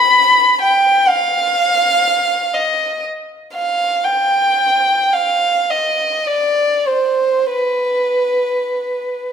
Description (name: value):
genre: classical, free, expressive piece for unaccompanied violin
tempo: 29-41 BPM (dotted quarters)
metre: 6/8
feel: rubato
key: unclear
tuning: A4 = 441 Hz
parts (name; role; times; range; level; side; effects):
- warm violin; solo; 0.0-9.3 s; B4 to B5; -13 LUFS; equal; none
room: moderate recital hall reverb, RT60 1.8 s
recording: minimal, uncompressed stereo recording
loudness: -13 LUFS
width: side -7 dB against mid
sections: 0.0-9.3 A section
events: none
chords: none